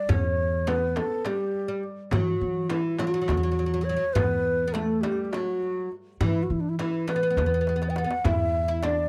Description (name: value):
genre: Turkish makam ensemble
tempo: 206 BPM (eighths)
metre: 7/8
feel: straight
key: E makam huseyni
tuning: A4 = 442 Hz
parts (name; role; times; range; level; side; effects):
- breathy mellow ney; melody; 0.0-9.1 s; D4 to G5; -29 LUFS; equal; none
- oud; second line; 0.0-9.1 s; E3 to E4; -35 LUFS; equal; none
- upright bass; bass; 0.1-9.1 s; E2 to E3; -30 LUFS; equal; none
- darbuka; percussion; 0.1-9.0 s; none; -32 LUFS; equal; none
- frame drum; percussion; 0.1-9.0 s; none; -37 LUFS; equal; none
room: small room reverb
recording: dry, close 1970s-style studio recording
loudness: -26 LUFS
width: mono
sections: 0.1-9.1 A section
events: drum fill 7.7-8.2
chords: none